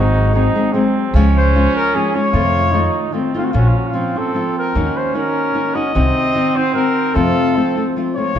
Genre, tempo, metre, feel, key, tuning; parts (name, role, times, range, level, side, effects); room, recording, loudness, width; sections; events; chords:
mexican folk, mariachi; 150 BPM; 3/4; straight; Bb harmonic minor from 3.5 s; A4 = 440 Hz
mellow trumpet; melody; 0.0-8.4 s; F4 to Eb5; -20 LUFS; left 2 dB
mellow trumpet; second line; 0.0-8.4 s; C4 to F4; -20 LUFS; right 4 dB
nylon-string guitar; accompaniment; 0.0-8.4 s; F2 to Ab4; -19 LUFS; left 3 dB
upright bass; bass; 0.0-8.4 s; Ab1 to F2; -16 LUFS; equal
moderate recital hall reverb, RT60 1.3 s; dark, warm production; -14 LUFS; side -9 dB against mid
0.0-3.5 A section; 3.5-8.4 B section
0.0 Ab7; 1.1 Db; 2.3 F7; 3.5 Bbm; 4.8 Ebm; 6.0 Cdim; 7.2 F